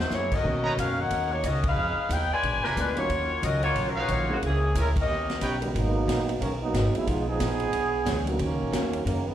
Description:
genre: jazz, big band swing.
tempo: 181 BPM.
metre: 4/4.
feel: swing 62% on 8ths.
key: Eb minor, G# minor from 5.7 s.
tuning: A4 = 440 Hz.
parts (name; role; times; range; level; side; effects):
mellow saxophone section; melody; 0.0-5.4 s; Db3 to Ab5; -27 LUFS; left 2 dB; slapback echo.
upright bass; bass; 0.0-9.3 s; F1 to B2; -29 LUFS; equal; none.
swinging big-band drum kit; drums; 0.0-9.2 s; crash cymbal, hi-hat, kick drum, ride cymbal, snare drum; -33 LUFS; equal; none.
picked plugged-in steel-string acoustic guitar; accompaniment; 0.1-9.3 s; Bb2 to C#5; -36 LUFS; left 3 dB; slapback echo.
dark concert grand piano; accompaniment; 0.4-8.4 s; D#3 to Bb4; -34 LUFS; right 1 dB; slapback echo.
clear trumpet section; stabs; 0.6-5.6 s; D4 to A#5; -32 LUFS; right 2 dB; slapback echo.
mellow trombone section; second line; 5.6-9.3 s; B2 to Ab4; -27 LUFS; right 4 dB; slapback echo.
room: light reverb, studio reverb.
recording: live gig heard through the venue's PA, club reverb.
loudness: -24 LUFS.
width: side -11 dB against mid.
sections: 0.0-5.7 A section; 5.7-9.3 B section.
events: band accent 1.6, 4.9; trombone section solo 5.7-9.3.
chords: 0.4 Bmaj9; 1.8 Fm7b5; 2.4 Bb7b9; 3.1 Ebm9; 4.4 Bbm7b5; 5.1 Eb7b13; 5.7 G#m9; 7.1 Fm7b5; 7.7 E13; 8.4 D#m7.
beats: 0.11 | 0.45 0.78 1.11 1.44 | 1.77 2.10 2.43 2.77 | 3.10 3.43 3.76 4.09 | 4.42 4.75 5.08 5.42 | 5.75 6.08 6.41 6.74 | 7.07 7.40 7.73 8.06 | 8.39 8.73 9.06.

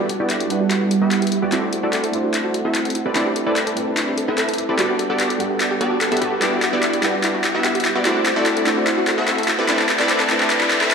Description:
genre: future bass.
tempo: 147 BPM.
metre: 4/4.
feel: half-time.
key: unclear.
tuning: A4 = 440 Hz.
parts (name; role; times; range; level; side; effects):
felt-muted upright piano; accompaniment; 0.0-10.9 s; G3 to F#5; -25 LUFS; right 1 dB; analog chorus, ping-pong delay.
ethereal airy pad; sustained chords; 0.0-10.9 s; F#5; -27 LUFS; right 4 dB; ensemble chorus, built-in reverb, phaser.
wide unison pluck; arpeggios; 0.0-10.9 s; E4 to A4; -27 LUFS; right 1 dB; none.
supersaw stab; riff; 0.0-10.9 s; B3 to E5; -21 LUFS; equal; cassette tape, low-pass filter, ping-pong delay.
warm 808-style bass; bass; 0.0-10.9 s; D1 to G2; -38 LUFS; left 1 dB; none.
dubstep drum kit; drums; 0.1-10.9 s; handclaps, hi-hat; -21 LUFS; left 1 dB; high-pass filter on hats, high-pass filter on toms, high-pass filter on snare, high-pass filter on room.
riser; sound effects; 8.9-10.9 s; none; -30 LUFS; left 1 dB; none.
room: wet lush hall reverb, RT60 1.7 s.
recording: dreamy mix soaked in reverb, high-pass filter.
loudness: -17 LUFS.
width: side -6 dB against mid.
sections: 0.0-10.9 A section.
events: build-up 0.0-10.9; drum fill 0.0-10.9; filter sweep on supersaw synth 0.0-10.9; filter sweep on ambient pad 0.0-10.9; filter sweep 0.0-10.9.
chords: 0.0 Em9; 1.5 D9; 3.0 Cmaj13; 4.8 Gmaj9; 6.4 Em9; 8.1 D9; 9.5 Cmaj13.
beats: 0.30 0.71 1.11 | 1.52 1.93 2.34 2.75 | 3.15 3.56 3.97 4.38 | 4.79 5.20 5.60 6.01 | 6.42 6.83 7.24 7.64 | 8.05 8.46 8.87 9.28 | 9.69 10.09 10.50 10.91.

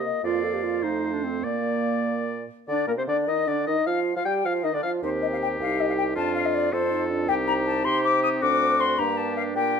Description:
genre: quick classical-period movement for wind quintet.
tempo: 95-108 BPM (dotted quarters).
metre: 6/8.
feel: rubato.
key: Bb major.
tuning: A4 = 440 Hz.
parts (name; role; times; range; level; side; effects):
silver concert flute; melody; 0.0-9.8 s; Bb4 to Eb6; -26 LUFS; left 6 dB; none.
clear oboe; second line; 0.0-9.8 s; F4 to G5; -30 LUFS; left 2 dB; none.
warm French horn; accompaniment; 0.0-9.8 s; A3 to G4; -31 LUFS; left 1 dB; none.
warm clarinet; accompaniment; 0.0-9.8 s; Bb3 to A4; -29 LUFS; right 9 dB; none.
mellow bassoon; bass; 0.0-9.8 s; C2 to G3; -30 LUFS; right 2 dB; none.
room: light reverb.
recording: none.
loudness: -22 LUFS.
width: side -6 dB against mid.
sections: 0.0-2.7 A section; 2.7-9.8 A section.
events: none.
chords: 0.2 Bb/F; 0.8 F7; 1.4 Bb; 3.9 Fsus2; 4.4 Dm; 5.0 Cm/Eb; 6.2 F6; 6.7 F7; 7.3 Cm; 8.4 D7; 9.0 Gm.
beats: | 0.23 0.82 | 1.44 2.06 | 2.68 3.27 | 3.86 4.45 | 5.02 5.60 | 6.16 6.73 | 7.28 7.85 | 8.42 8.99 | 9.56.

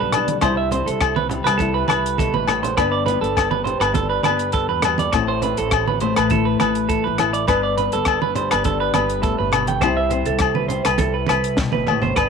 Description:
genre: highlife guitar band.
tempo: 102 BPM.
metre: 4/4.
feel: straight.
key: unclear.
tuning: A4 = 440 Hz.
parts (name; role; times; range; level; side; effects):
nylon-string guitar; accompaniment; 0.0-12.3 s; G2 to B4; -24 LUFS; left 11 dB; none.
clean electric guitar; arpeggios; 0.0-12.3 s; A4 to G5; -21 LUFS; right 10 dB; tape echo.
upright bass; bass; 0.0-12.3 s; G1 to E2; -26 LUFS; equal; none.
compact cocktail drum kit; drums; 0.1-12.3 s; hi-hat, kick drum, rim click, snare drum, toms; -24 LUFS; left 1 dB; none.
agogo bells; percussion; 0.1-12.3 s; none; -24 LUFS; left 13 dB; none.
congas; percussion; 0.1-12.2 s; none; -27 LUFS; right 7 dB; none.
room: moderate spring reverb, RT60 2.8 s.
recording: 1960s-style stereo with parts hard left and right.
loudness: -17 LUFS.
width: side -6 dB against mid.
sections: 0.0-12.2 A section.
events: drum fill 2.2-2.8, 11.6-12.2.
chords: 0.4 C; 2.8 G; 5.1 Am; 7.5 G; 9.8 C.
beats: | 0.44 1.02 1.61 2.20 | 2.78 3.37 3.96 4.54 | 5.13 5.72 6.31 6.89 | 7.48 8.07 8.65 9.24 | 9.83 10.41 11.00 11.59 | 12.18.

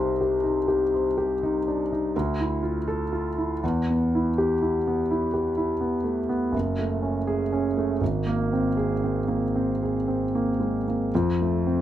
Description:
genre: classical, impressionist solo piano.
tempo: 37-43 BPM (dotted quarters).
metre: 9/8.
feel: rubato.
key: unclear.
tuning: A4 = 439 Hz.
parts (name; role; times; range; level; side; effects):
bright concert grand piano; solo; 0.0-11.8 s; Gb1 to C5; -22 LUFS; equal; none.
room: light reverb.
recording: none.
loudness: -23 LUFS.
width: side -12 dB against mid.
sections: 0.0-11.8 A section.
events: none.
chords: 0.0 Cmadd9; 2.1 Dmadd9; 3.6 Em; 6.5 Gbmadd9; 8.0 Abadd9; 11.1 F.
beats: 0.68 2.14 | 3.63 5.10 6.54 | 8.01 9.54 11.11.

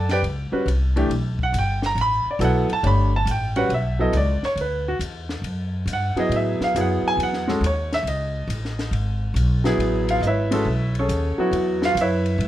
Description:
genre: modal jazz.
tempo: 138 BPM.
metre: 4/4.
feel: swing 67% on 8ths.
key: G lydian.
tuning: A4 = 439 Hz.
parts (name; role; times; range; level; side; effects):
clear grand piano; accompaniment; 0.0-12.5 s; E3 to B5; -22 LUFS; right 1 dB; none.
upright bass; bass; 0.0-12.5 s; G1 to A2; -23 LUFS; equal; none.
compact cocktail drum kit; drums; 0.1-12.5 s; hi-hat, kick drum, ride cymbal, snare drum; -34 LUFS; left 3 dB; none.
room: light reverb.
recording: none.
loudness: -20 LUFS.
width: side -13 dB against mid.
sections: 0.0-12.5 A section.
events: none.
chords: 0.0 Gmaj9; 6.3 Amaj9.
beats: 0.23 0.66 | 1.10 1.53 1.97 2.40 | 2.83 3.27 3.70 4.14 | 4.57 5.01 5.44 5.88 | 6.31 6.75 7.18 7.62 | 8.05 8.49 8.92 9.36 | 9.79 10.22 10.66 11.09 | 11.53 11.96 12.40.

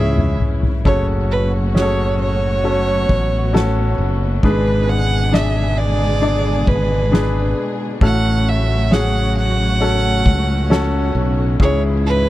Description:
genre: pop ballad.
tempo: 67 BPM.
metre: 4/4.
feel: straight.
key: F# minor.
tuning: A4 = 441 Hz.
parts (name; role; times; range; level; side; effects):
rich violin; melody; 0.0-12.3 s; B4 to F#5; -22 LUFS; right 3 dB; none.
clear concert grand piano; accompaniment; 0.0-12.3 s; G#2 to D5; -22 LUFS; left 2 dB; none.
rich studio string section; sustained chords; 0.0-12.3 s; G#2 to G#4; -25 LUFS; equal; none.
fretless electric bass; bass; 0.0-12.3 s; F#1 to C#2; -18 LUFS; equal; wide subtle chorus.
soft-mallet drum kit; drums; 0.2-12.3 s; kick drum, ride cymbal, snare drum, splash cymbal, toms; -21 LUFS; equal; none.
room: little or no reverb.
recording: dry, close 1970s-style studio recording.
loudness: -14 LUFS.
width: side -15 dB against mid.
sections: 0.0-12.3 A section.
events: drum fill 0.0-0.9.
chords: 0.0 C#m; 0.9 F#m; 4.4 G#dim; 8.0 F#m/A; 11.6 C#m.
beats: | 0.85 1.75 2.64 3.54 | 4.43 5.33 6.22 7.12 | 8.02 8.91 9.81 10.70 | 11.60.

